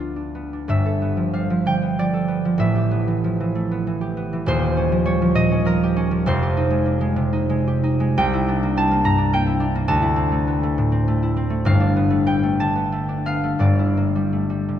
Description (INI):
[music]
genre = classical, solo harp piece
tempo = 52-74 BPM (dotted quarters)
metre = 6/8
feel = rubato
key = unclear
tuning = A4 = 440 Hz
[part]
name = concert harp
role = solo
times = 0.0-14.8 s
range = Eb1 to Bb5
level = -18 LUFS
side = equal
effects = none
[sound]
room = wet church reverb, RT60 3.3 s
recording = none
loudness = -18 LUFS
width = side -10 dB against mid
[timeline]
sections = 0.7-14.8 A section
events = none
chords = 0.0 Dm6; 0.7 G9; 2.6 Asus2; 4.5 Eb9; 6.3 Fm9; 8.2 C9; 9.9 Dsus2; 11.7 G9; 13.6 Gm6